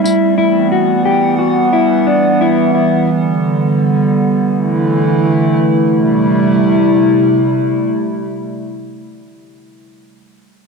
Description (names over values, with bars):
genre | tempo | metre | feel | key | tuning
dream pop | 89 BPM | 4/4 | straight | A dorian | A4 = 440 Hz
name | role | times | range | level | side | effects
warbly tape-like pad | sustained chords | 0.0-9.1 s | C3 to F#5 | -12 LUFS | right 2 dB | chorus, built-in reverb, cassette tape
mellow electric guitar | arpeggios | 0.0-3.1 s | D4 to G4 | -14 LUFS | left 8 dB | lush chorus, cassette tape, analog delay
room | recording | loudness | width
wet studio reverb, RT60 0.6 s | home recording on cassette | -11 LUFS | side -4 dB against mid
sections
0.0-5.8 A section; 5.8-8.5 B section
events
none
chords
0.4 Emadd9; 3.1 Gmaj7; 4.4 Dsus2; 5.8 Am7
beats
| 0.39 1.07 1.74 2.41 | 3.09 3.76 4.44 5.11 | 5.79 6.46 7.13 7.81